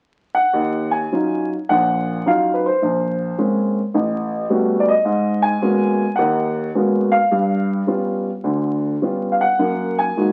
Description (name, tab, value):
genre	solo jazz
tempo	106 BPM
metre	4/4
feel	swing 69% on 8ths, rubato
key	Eb minor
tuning	A4 = 440 Hz
part	warm upright piano	solo	0.3-10.3 s	A1 to Ab5	-19 LUFS	equal	none
room	moderate club reverb, RT60 0.7 s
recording	very old 78 rpm record, vinyl crackle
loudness	-19 LUFS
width	mono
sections	0.5-10.3 A section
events	none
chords	0.0 N.C.; 0.5 Ebm9; 2.8 Bbm9; 3.9 A13; 5.1 Abm11; 7.3 G7#11; 9.6 Gb69